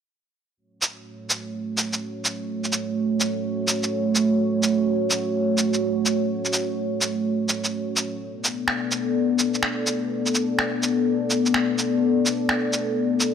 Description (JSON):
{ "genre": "future garage", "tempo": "126 BPM", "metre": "4/4", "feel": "swing 65% on 16ths", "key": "unclear", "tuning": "A4 = 440 Hz", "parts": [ { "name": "dark analog pad", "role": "sustained chords", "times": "1.4-13.3 s", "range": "A3 to D5", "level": "-22 LUFS", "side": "equal", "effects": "chorus" }, { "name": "electronic shaker and finger snaps", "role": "drums", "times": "0.8-13.3 s", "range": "none", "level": "-23 LUFS", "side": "equal", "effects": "small room reverb" } ], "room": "wet lush hall reverb, RT60 2.2 s", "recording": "none", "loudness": "-21 LUFS", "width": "side -8 dB against mid", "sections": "0.6-13.3 A section", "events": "none", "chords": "0.6 A6; 8.2 Bm7", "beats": "| 0.59 1.06 1.54 2.01 | 2.49 2.97 3.44 3.92 | 4.39 4.87 5.35 5.82 | 6.30 6.78 7.25 7.73 | 8.21 8.68 9.16 9.63 | 10.11 10.59 11.06 11.54 | 12.01 12.49 12.97" }